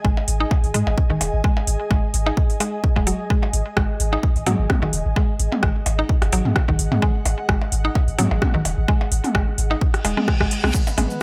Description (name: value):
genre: minimal techno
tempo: 129 BPM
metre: 4/4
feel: swing 54% on 16ths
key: G# minor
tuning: A4 = 440 Hz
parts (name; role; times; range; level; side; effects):
- mallet-like synth pluck; riff; 0.0-11.0 s; D#3 to D#4; -28 LUFS; equal; chorus, cassette tape, sidechain pumping, delay
- punchy sub bass; bass; 0.0-11.1 s; D#1 to G#2; -25 LUFS; equal; sidechain pumping
- electronic kick drum; drums; 0.0-10.8 s; none; -22 LUFS; equal; none
- ethereal airy pad; texture; 0.0-10.7 s; G#4 to G#5; -34 LUFS; equal; ensemble chorus, built-in reverb, sidechain pumping
- electronic percussion blips and toms; percussion; 0.2-11.1 s; none; -30 LUFS; equal; tape echo
- house drum kit; drums; 0.3-11.2 s; crash cymbal, hi-hat, rim click, shaker; -28 LUFS; equal; none
- reverse cymbal; sound effects; 10.0-10.7 s; none; -33 LUFS; equal; none
- bubbling stepped-filter texture; texture; 10.9-11.2 s; B3 to B4; -35 LUFS; equal; chorus, built-in reverb, sidechain pumping
room: digital ambience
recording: none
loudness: -20 LUFS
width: mono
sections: 0.0-10.7 A section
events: reverse cymbal 10.0-10.7; drum fill 10.3-10.7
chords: 0.0 G#7(no3)